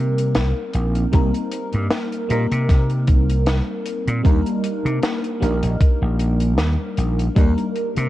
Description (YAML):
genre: vaporwave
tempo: 77 BPM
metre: 4/4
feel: swing 55% on 16ths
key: Eb major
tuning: A4 = 438 Hz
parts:
  - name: FM electric piano with soft pad layer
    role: accompaniment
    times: 0.0-8.1 s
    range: G3 to Bb4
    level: -23 LUFS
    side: equal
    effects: phaser, lush chorus, analog delay
  - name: vintage slap bass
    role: bass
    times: 0.0-8.1 s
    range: Bb1 to C3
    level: -19 LUFS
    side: equal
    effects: none
  - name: compact cocktail drum kit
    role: drums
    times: 0.2-8.1 s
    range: hi-hat, snare drum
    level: -26 LUFS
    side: left 1 dB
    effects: studio reverb
  - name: electronic kick drum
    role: drums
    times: 1.1-7.5 s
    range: none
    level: -15 LUFS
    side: equal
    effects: studio reverb
room: small room ambience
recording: dark, warm production, cassette tape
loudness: -17 LUFS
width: side -15 dB against mid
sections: 0.0-8.1 A section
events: none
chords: 0.0 Cm7; 4.2 Ebmaj7